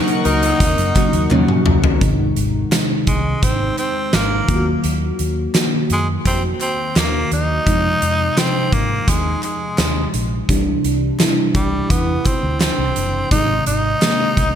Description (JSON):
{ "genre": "1980s-style pop", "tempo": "85 BPM", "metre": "4/4", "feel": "straight", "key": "Ab mixolydian", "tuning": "A4 = 440 Hz", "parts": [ { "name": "FM electric piano with soft pad layer", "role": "accompaniment", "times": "0.0-14.6 s", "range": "Cb3 to Gb4", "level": "-20 LUFS", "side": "equal", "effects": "chorus" }, { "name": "chorused pulse-width pad", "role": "sustained chords", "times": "0.0-2.0 s", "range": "Eb4 to Db6", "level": "-25 LUFS", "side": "left 1 dB", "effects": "none" }, { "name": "huge arena drum kit", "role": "drums", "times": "0.1-14.5 s", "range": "hi-hat, kick drum, snare drum, toms", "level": "-19 LUFS", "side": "equal", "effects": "gated reverb" }, { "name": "warm horn section", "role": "stabs", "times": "0.2-0.7 s", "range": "Eb4 to Bb4", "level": "-27 LUFS", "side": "left 5 dB", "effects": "ping-pong delay" }, { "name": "raspy tenor saxophone", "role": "melody", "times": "0.3-14.6 s", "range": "G3 to Eb4", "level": "-21 LUFS", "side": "equal", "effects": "ping-pong delay" }, { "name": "vintage muted fingered electric bass", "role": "bass", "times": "0.3-14.6 s", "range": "Gb1 to Ab2", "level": "-21 LUFS", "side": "equal", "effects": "none" }, { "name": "group handclap", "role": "percussion", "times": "1.0-14.2 s", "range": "none", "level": "-36 LUFS", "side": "left 4 dB", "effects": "none" } ], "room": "light reverb, small room ambience", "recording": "none", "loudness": "-15 LUFS", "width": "side -9 dB against mid", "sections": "0.0-2.0 A section; 2.0-14.6 B section", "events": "drum fill 1.3-2.0", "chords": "0.0 Ebm7; 2.0 Ab; 4.5 Ebm; 7.7 Fm7; 10.5 Cadd9; 13.3 Ab" }